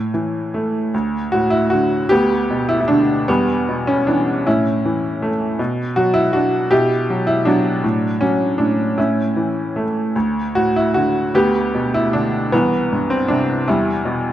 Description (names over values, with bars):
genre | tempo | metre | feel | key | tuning
classical, lyrical solo piano | 52 BPM (dotted quarters) | 6/8 | uneven beats, rubato | D major | A4 = 440 Hz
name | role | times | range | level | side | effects
bright upright piano | solo | 0.0-14.3 s | C2 to G4 | -15 LUFS | equal | none
room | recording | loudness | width
moderate scoring stage reverb, RT60 1.6 s | dark, warm production, nothing above 10.8 kHz | -15 LUFS | side -12 dB against mid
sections
0.9-14.3 A section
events
none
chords
0.0 Asus4; 0.9 D5; 2.1 G/D; 3.3 Em; 4.5 A; 5.6 Bm; 6.7 Emadd9/B; 7.8 Dmaj7/A; 9.0 A; 10.2 D5; 11.3 G/D; 12.5 C; 13.7 Em